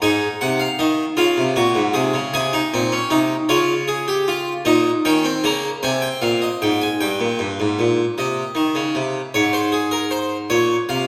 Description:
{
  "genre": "classical, baroque-style 3-part fugue for harpsichord",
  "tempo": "52 BPM (dotted quarters)",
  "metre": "6/8",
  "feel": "straight",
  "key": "unclear",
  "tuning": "A4 = 441 Hz",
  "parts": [
    { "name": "harpsichord", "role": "solo", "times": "0.0-11.1 s", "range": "G2 to Bb5", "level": "-19 LUFS", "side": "equal", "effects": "none" }
  ],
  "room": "wet recital hall reverb, RT60 1.6 s",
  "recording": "recorded in a church or concert hall",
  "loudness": "-19 LUFS",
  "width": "mono",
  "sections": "0.0-7.0 A section; 7.0-11.1 B section",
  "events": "none",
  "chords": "0.0 Ab; 1.2 Db; 2.3 Ab; 3.5 Db; 4.7 Eb/Bb; 5.8 Ab; 7.0 Gm; 8.2 Cm; 9.4 Abadd9; 10.5 Bbm"
}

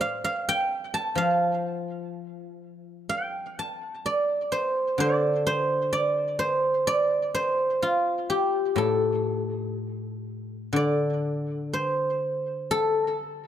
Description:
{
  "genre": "chinese traditional, Chinese solo plucked strings",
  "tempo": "62 BPM",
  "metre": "2/4",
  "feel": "rubato",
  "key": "unclear",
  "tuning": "A4 = 440 Hz",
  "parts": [
    { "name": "guzheng", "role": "solo", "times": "0.0-13.5 s", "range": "A2 to A5", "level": "-24 LUFS", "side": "equal", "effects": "tape echo" }
  ],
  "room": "light reverb",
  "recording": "close, detailed microphones",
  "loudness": "-24 LUFS",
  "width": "side -10 dB against mid",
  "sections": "0.0-10.7 A section; 10.7-13.5 B section",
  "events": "none",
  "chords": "none"
}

